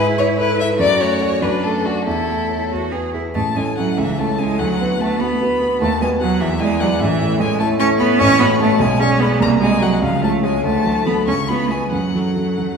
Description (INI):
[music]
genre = quick classical-period movement for piano trio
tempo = 91-102 BPM (dotted quarters)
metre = 6/8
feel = rubato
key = A major, F# minor from 8.2 s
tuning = A4 = 440 Hz
[part]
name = rich violin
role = melody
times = 0.0-12.8 s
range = F#4 to C#6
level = -22 LUFS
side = left 5 dB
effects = none
[part]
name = rich cello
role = second line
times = 0.0-12.8 s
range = E3 to G#4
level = -20 LUFS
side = right 3 dB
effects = none
[part]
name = dark baby grand piano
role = accompaniment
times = 0.0-12.8 s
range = A1 to D#5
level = -18 LUFS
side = equal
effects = none
[sound]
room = wet scoring stage reverb, RT60 1.8 s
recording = heard from further back in the room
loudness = -15 LUFS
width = side -6 dB against mid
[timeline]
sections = 0.0-3.3 A section; 3.3-12.8 B section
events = none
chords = 0.0 E/G#; 0.8 D/F#; 2.1 A/E; 2.7 E; 3.3 A; 4.0 A/C#; 4.6 Bm/D; 5.8 B/D#; 6.4 E7; 7.0 A; 8.2 F#m/A; 8.8 G#dim/B; 9.4 G#7/B#; 10.0 C#; 10.6 D; 11.3 C#7; 11.9 F#m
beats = 0.18 | 0.79 1.41 | 2.06 2.70 | 3.35 3.97 | 4.59 5.20 | 5.80 6.40 | 6.99 7.59 | 8.19 8.80 | 9.40 10.02 | 10.64 11.27 | 11.92 12.58